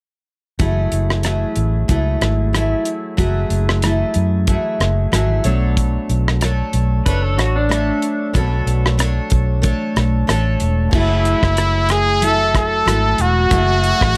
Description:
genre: indie pop, bedroom pop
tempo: 93 BPM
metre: 4/4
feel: swing 55% on 16ths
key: F# minor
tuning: A4 = 437 Hz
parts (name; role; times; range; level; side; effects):
- picked steel-string acoustic guitar; accompaniment; 0.6-14.2 s; B2 to C#5; -23 LUFS; equal; subtle chorus, vibrato effect, plate reverb
- vintage muted fingered electric bass; bass; 0.6-14.2 s; E1 to F#2; -20 LUFS; equal; none
- damped 70s drum kit; drums; 0.6-14.2 s; crash cymbal, hi-hat, kick drum, rim click; -22 LUFS; equal; none
- electric guitar at the edge of break-up; second line; 7.1-8.5 s; D4 to B4; -25 LUFS; equal; lush chorus, plate reverb, analog delay
- brilliant trumpet; melody; 11.0-14.2 s; E4 to A4; -19 LUFS; equal; analog chorus, plate reverb
room: light reverb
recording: none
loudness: -17 LUFS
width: mono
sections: 0.6-10.9 A section; 10.9-14.2 B section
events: none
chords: 0.6 F#m9; 5.4 Bm9; 10.9 F#m9

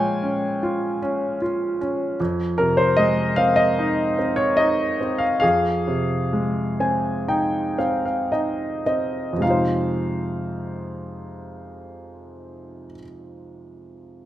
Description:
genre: classical, lyrical solo piano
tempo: 53-77 BPM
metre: 4/4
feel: rubato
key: F minor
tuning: A4 = 440 Hz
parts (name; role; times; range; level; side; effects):
- warm concert grand piano; solo; 0.0-14.3 s; F2 to Ab5; -20 LUFS; equal; none
room: moderate recital hall reverb, RT60 1.4 s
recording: none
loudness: -19 LUFS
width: side -13 dB against mid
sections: 0.0-9.4 A section; 9.4-13.7 B section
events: slowing down 2.2-9.4; grand piano fill 6.3-9.4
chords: 0.0 Bbm7; 2.2 Fm7

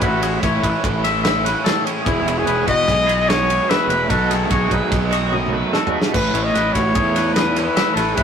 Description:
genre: math rock and midwest emo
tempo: 147 BPM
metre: 5/4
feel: straight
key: unclear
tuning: A4 = 439 Hz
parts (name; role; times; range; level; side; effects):
- warm trumpet; melody; 0.0-8.2 s; E4 to D#5; -20 LUFS; left 2 dB; none
- twangy electric guitar; accompaniment; 0.0-8.2 s; E2 to G#4; -25 LUFS; right 3 dB; tremolo
- twangy electric guitar; arpeggios; 0.0-8.2 s; F#4 to E5; -23 LUFS; left 3 dB; none
- crunchy overdriven guitar; riff; 0.0-8.2 s; A2 to A4; -26 LUFS; right 1 dB; none
- fuzz fingered electric bass; bass; 0.0-8.2 s; E1 to E2; -23 LUFS; right 1 dB; overdrive
- loose indie drum kit; drums; 0.0-8.2 s; crash cymbal, kick drum, ride cymbal, snare drum, toms; -22 LUFS; right 1 dB; none
room: moderate small room reverb, RT60 0.5 s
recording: rough rehearsal-room recording, warm saturation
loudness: -15 LUFS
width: side -7 dB against mid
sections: 0.0-8.2 A section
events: drum fill 5.3-6.1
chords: 0.0 Amaj9; 2.1 E6; 4.1 B7; 6.1 Aadd9

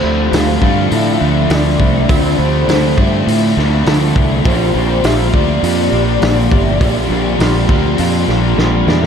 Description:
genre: rock, shoegaze and dream pop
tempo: 102 BPM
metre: 4/4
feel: straight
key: D minor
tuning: A4 = 440 Hz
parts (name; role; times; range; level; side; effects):
- warm velvety synth lead; melody; 0.0-8.6 s; C5 to F5; -21 LUFS; left 3 dB; chorus, analog delay
- string machine, violas; sustained chords; 0.0-9.1 s; F3 to C6; -24 LUFS; equal; ensemble chorus
- fingerpicked twelve-string acoustic guitar; arpeggios; 0.0-9.1 s; E4 to G4; -26 LUFS; right 4 dB; ensemble chorus, analog delay
- biting overdriven guitar; riff; 0.0-9.1 s; Bb2 to D4; -20 LUFS; left 10 dB; analog chorus
- crunchy overdriven guitar; riff; 0.0-9.1 s; Bb2 to D4; -19 LUFS; right 1 dB; none
- twangy electric guitar; riff; 0.0-9.1 s; Bb2 to F4; -23 LUFS; right 10 dB; reverse reverb
- growling fingered electric bass; bass; 0.0-9.1 s; G1 to A2; -16 LUFS; equal; overdrive
- loose indie drum kit; drums; 0.3-9.1 s; hi-hat, kick drum, snare drum; -18 LUFS; equal; none
room: light reverb, small room ambience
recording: none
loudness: -11 LUFS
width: side -7 dB against mid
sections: 0.0-9.1 A section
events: drum fill 8.6-9.1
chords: 0.0 Dm9; 4.4 Bb69

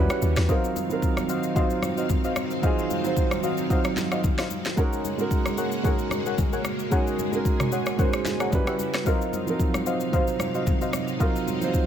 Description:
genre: amapiano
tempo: 112 BPM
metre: 4/4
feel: swing 55% on 16ths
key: Eb dorian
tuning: A4 = 439 Hz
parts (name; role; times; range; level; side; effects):
- dark concert grand piano; accompaniment; 0.0-11.9 s; F3 to C5; -27 LUFS; right 4 dB; none
- string machine, full ensemble; sustained chords; 0.0-11.9 s; C3 to F5; -32 LUFS; equal; ensemble chorus, sidechain pumping
- woody log drum bass; bass; 0.0-0.5 s; Eb2 to E2; -22 LUFS; left 1 dB; none
- deep mellow chord stab; stabs; 0.1-11.9 s; Gb4 to F#5; -31 LUFS; left 3 dB; chorus, ping-pong delay
- afro-pop drum kit; drums; 0.1-11.9 s; kick drum, rim click, shaker, snare drum, toms; -26 LUFS; left 1 dB; none
- congas; percussion; 0.8-11.6 s; none; -35 LUFS; left 4 dB; none
room: light reverb, digital ambience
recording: none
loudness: -22 LUFS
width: side -9 dB against mid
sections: 0.5-11.9 A section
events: none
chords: 0.5 Ebm69; 4.8 Ab9sus4; 8.5 Em69; 9.1 Ebm69

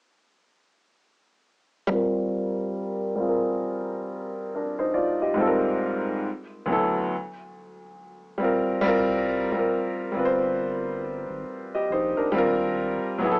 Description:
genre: lo-fi hip hop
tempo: 69 BPM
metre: 4/4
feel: swing 62% on 16ths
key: C minor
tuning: A4 = 440 Hz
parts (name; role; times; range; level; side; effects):
- warm upright piano; accompaniment; 1.9-13.4 s; D2 to Eb5; -23 LUFS; equal; low-pass filter
- saturated sub bass; bass; 8.9-13.4 s; D1 to C2; -39 LUFS; equal; none
room: wet studio reverb, RT60 0.6 s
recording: small speaker sound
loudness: -23 LUFS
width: side -26 dB against mid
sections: 1.9-8.9 A section; 8.9-13.4 B section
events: filter sweep on upright piano 1.9-8.9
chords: 1.9 C5; 5.4 Abmaj7; 6.2 D; 7.1 Gm7; 8.9 C5; 12.3 Abmaj7

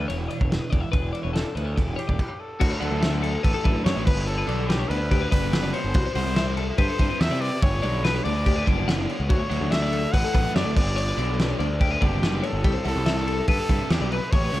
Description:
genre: math rock and midwest emo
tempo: 143 BPM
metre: 4/4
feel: straight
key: unclear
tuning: A4 = 440 Hz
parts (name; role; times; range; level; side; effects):
- twelve-string electric guitar; accompaniment; 0.0-2.2 s; E2 to A4; -34 LUFS; right 6 dB; tremolo
- twelve-string electric guitar; arpeggios; 0.0-14.6 s; F#4 to F#5; -30 LUFS; left 6 dB; dub echo
- fuzz picked electric bass; bass; 0.0-14.6 s; E1 to C3; -26 LUFS; equal; overdrive
- loose indie drum kit; drums; 0.1-14.6 s; crash cymbal, kick drum, ride cymbal, snare drum; -24 LUFS; equal; none
- clear trumpet; melody; 2.0-14.6 s; G4 to F#5; -30 LUFS; equal; dub echo
- overdriven electric guitar; riff; 2.8-14.6 s; C3 to E4; -32 LUFS; right 1 dB; dub echo
room: light reverb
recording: echo-heavy mix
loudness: -21 LUFS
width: side -15 dB against mid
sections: 0.0-2.6 A section; 2.6-14.6 B section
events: stop 2.2-2.6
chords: 0.0 E7(no3); 2.6 Dmaj7; 4.1 Gmaj7; 5.9 Cmaj7; 7.6 Gmaj7; 9.3 Dmaj7; 10.8 Gmaj7; 12.6 Cmaj7

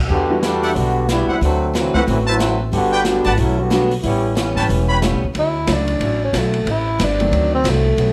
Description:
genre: jazz, big band swing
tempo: 183 BPM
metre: 4/4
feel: swing 61% on 8ths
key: D major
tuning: A4 = 440 Hz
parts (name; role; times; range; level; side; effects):
- upright bass; bass; 0.0-8.1 s; E1 to E2; -22 LUFS; equal; none
- bright trombone section; second line; 0.1-5.0 s; D3 to A4; -22 LUFS; equal; none
- picked swing-style acoustic guitar; accompaniment; 0.1-8.1 s; G2 to B4; -29 LUFS; equal; none
- warm concert grand piano; accompaniment; 0.3-7.6 s; Eb3 to C#5; -25 LUFS; equal; none
- open jazz drum kit; drums; 0.4-8.1 s; hi-hat, kick drum, ride cymbal, snare drum; -27 LUFS; equal; none
- warm trumpet section; stabs; 0.6-5.0 s; G4 to B5; -24 LUFS; equal; none
- breathy tenor saxophone; melody; 5.4-8.1 s; A3 to E4; -22 LUFS; equal; plate reverb
room: light reverb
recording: none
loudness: -18 LUFS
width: mono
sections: 0.0-5.3 A section; 5.3-8.1 B section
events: trombone section solo 0.0-5.3; tenor saxophone solo 5.3-8.1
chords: 0.1 Em9; 1.4 D13; 2.7 Gmaj7; 4.0 A9; 5.3 Dmaj9; 6.7 Am9; 7.3 D7b9

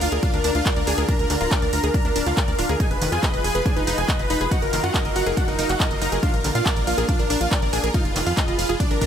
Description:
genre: uplifting trance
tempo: 140 BPM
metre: 4/4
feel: straight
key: unclear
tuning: A4 = 440 Hz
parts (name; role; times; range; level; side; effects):
- supersaw chords; melody; 0.0-9.1 s; D4 to Cb6; -25 LUFS; right 1 dB; sidechain pumping, ping-pong delay
- plucky unison lead; second line; 0.0-9.1 s; F4 to Cb6; -31 LUFS; equal; analog chorus, sidechain pumping, ping-pong delay
- lush unison pad; sustained chords; 0.0-9.1 s; D3 to Cb5; -30 LUFS; right 1 dB; chorus, sidechain pumping
- tight sequencer bass; bass; 0.0-9.1 s; D1 to Bb2; -26 LUFS; equal; sidechain pumping
- techno drum kit; drums; 0.0-9.1 s; handclaps, hi-hat; -28 LUFS; right 2 dB; sidechain pumping on hats, sidechain pumping on cymbals
- wide unison pluck; arpeggios; 0.1-9.1 s; D3 to Eb5; -28 LUFS; left 2 dB; sidechain pumping, ping-pong delay
- electronic kick drum; drums; 0.2-9.1 s; none; -23 LUFS; equal; none
room: little or no reverb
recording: none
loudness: -19 LUFS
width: side -8 dB against mid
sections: 0.0-9.1 A section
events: none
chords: 0.0 Bb/D; 2.8 Fdim; 4.5 Ebmadd9/Gb; 6.2 Bb; 7.9 Fdim

